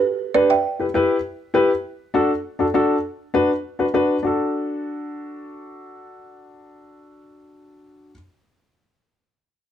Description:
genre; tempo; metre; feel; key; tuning
latin; 200 BPM; 4/4; straight; D major; A4 = 440 Hz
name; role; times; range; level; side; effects
folk marimba with medium mallets; melody; 0.0-1.5 s; G4 to G5; -18 LUFS; right 6 dB; plate reverb
warm upright piano; accompaniment; 0.3-8.1 s; D4 to B4; -20 LUFS; left 2 dB; none
room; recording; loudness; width
light reverb; close, detailed microphones; -18 LUFS; side -10 dB against mid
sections
0.0-1.8 A section; 1.8-4.2 B section; 4.2-6.6 C section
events
none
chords
0.0 G; 0.6 Em; 1.8 D; 3.0 Bm; 4.2 D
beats
0.04 0.34 | 0.64 0.94 1.24 1.54 | 1.84 2.14 2.44 2.74 | 3.04 3.34 3.64 3.94 | 4.24 4.54 4.84 5.14 | 5.45 5.75 6.05 6.35

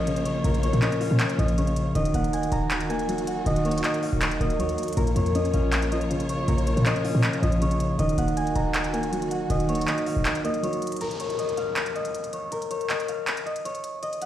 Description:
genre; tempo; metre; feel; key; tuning
hip hop, trap; 159 BPM; 4/4; half-time; unclear; A4 = 435 Hz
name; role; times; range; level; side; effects
concert harp; melody; 0.0-14.3 s; Bb4 to Bb5; -29 LUFS; left 2 dB; low-pass filter, tape echo
dark concert grand piano; accompaniment; 0.0-11.0 s; Bb2 to Eb5; -26 LUFS; equal; low-pass filter
dark symphonic string section; sustained chords; 0.0-11.0 s; Eb3 to Db5; -35 LUFS; right 3 dB; none
short 808-style bass; bass; 0.0-10.3 s; Eb1 to Bb2; -26 LUFS; equal; none
downlifter; sound effects; 0.0-2.0, 11.0-14.0 s; none; -41 LUFS; equal; none
trap drum kit; drums; 0.1-14.3 s; handclaps, hi-hat; -31 LUFS; equal; none
room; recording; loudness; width
light reverb, studio ambience; played on a big sound system in a bare room, large studio reverb, vinyl crackle; -22 LUFS; side -12 dB against mid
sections
0.0-11.0 A section; 11.0-14.3 B section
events
kick muted 10.3-11.0; break 11.0-14.3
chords
0.0 Bbm; 2.0 Ebm; 5.0 Bbm; 8.0 Ebm; 11.0 N.C.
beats
0.07 | 0.44 0.82 1.20 1.57 | 1.95 2.33 2.71 3.08 | 3.46 3.84 4.22 4.59 | 4.97 5.35 5.73 6.10 | 6.48 6.86 7.24 7.61 | 7.99 8.37 8.74 9.12 | 9.50 9.88 10.25 10.63 | 11.01 11.39 11.76 12.14 | 12.52 12.90 13.27 13.65 | 14.03

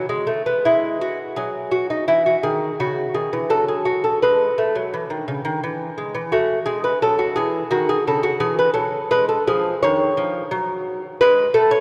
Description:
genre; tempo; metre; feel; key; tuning
classical, baroque-style dance for lute; 86 BPM; 4/4; rubato; E major; A4 = 440 Hz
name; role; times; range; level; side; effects
lute; solo; 0.0-11.8 s; C#3 to C#5; -20 LUFS; equal; none
room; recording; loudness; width
wet cathedral reverb, RT60 4.2 s; recorded in a church or concert hall; -20 LUFS; mono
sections
0.7-11.8 A section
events
none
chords
0.0 B5; 0.7 E; 3.5 B5/F#; 4.9 E; 6.3 F#m; 9.1 C#; 10.5 F#m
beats
| 0.68 1.39 2.09 2.81 | 3.52 4.23 4.93 5.63 | 6.33 7.03 7.72 8.41 | 9.11 9.85 10.53 11.21

